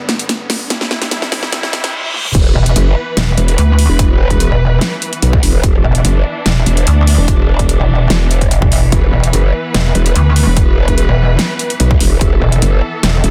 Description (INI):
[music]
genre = heavy wobble dubstep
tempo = 146 BPM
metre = 4/4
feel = half-time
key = E minor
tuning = A4 = 441 Hz
[part]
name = clear studio string section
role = sustained chords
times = 0.0-13.3 s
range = G2 to B4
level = -24 LUFS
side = equal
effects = sidechain pumping, low-pass filter
[part]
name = riser and reverse cymbal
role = sound effects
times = 0.1-2.3 s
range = none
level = -27 LUFS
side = equal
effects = none
[part]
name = dubstep drum kit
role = drums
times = 0.1-13.3 s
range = crash cymbal, hi-hat, snare drum, toms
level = -20 LUFS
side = equal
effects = small room ambience
[part]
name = growl bass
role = bass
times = 2.3-13.3 s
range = E1 to B1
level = -15 LUFS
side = equal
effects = chorus, overdrive
[part]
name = electronic kick drum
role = drums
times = 2.3-12.3 s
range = none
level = -16 LUFS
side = equal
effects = small room ambience
[part]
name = pulsing pluck wobble bass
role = bass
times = 2.6-13.2 s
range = E1 to D2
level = -14 LUFS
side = equal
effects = chorus, overdrive
[sound]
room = little or no reverb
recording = dense, heavily limited modern master, high-pass filter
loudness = -13 LUFS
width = mono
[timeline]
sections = 0.0-2.3 A section; 2.3-13.3 B section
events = build-up 0.0-2.3; drum fill 0.0-1.9, 2.1; filter sweep on string section 0.0-2.3; reverse cymbal 1.5-2.3; drop 2.3-13.3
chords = 0.0 G; 0.7 C; 2.3 E5